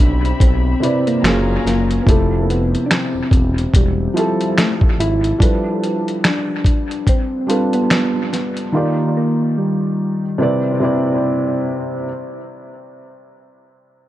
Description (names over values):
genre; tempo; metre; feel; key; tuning
lo-fi hip hop; 72 BPM; 4/4; swing 57% on 16ths; C major; A4 = 439 Hz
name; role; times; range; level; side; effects
soft struck synth lead; melody; 0.0-11.7 s; G3 to E4; -21 LUFS; left 1 dB; chorus, low-pass filter, dub echo
felt-muted upright piano; accompaniment; 0.0-12.1 s; C3 to D5; -20 LUFS; right 1 dB; cassette tape, low-pass filter, dub echo
warm studio string section; sustained chords; 0.0-2.1 s; C4 to B5; -30 LUFS; left 3 dB; low-pass filter
smooth synth bass; bass; 0.0-5.3 s; E1 to B1; -19 LUFS; equal; none
dusty soul sampler-style drum kit; drums; 0.2-8.7 s; finger snaps, hi-hat, kick drum, snare drum; -16 LUFS; equal; none
room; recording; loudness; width
light reverb; echo-heavy mix, cassette tape; -14 LUFS; side -14 dB against mid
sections
0.0-12.1 A section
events
none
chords
0.0 Cmaj7; 1.2 F#maj9; 2.1 Fmaj9; 5.4 G9; 8.7 Ebmaj7; 10.4 Cmaj9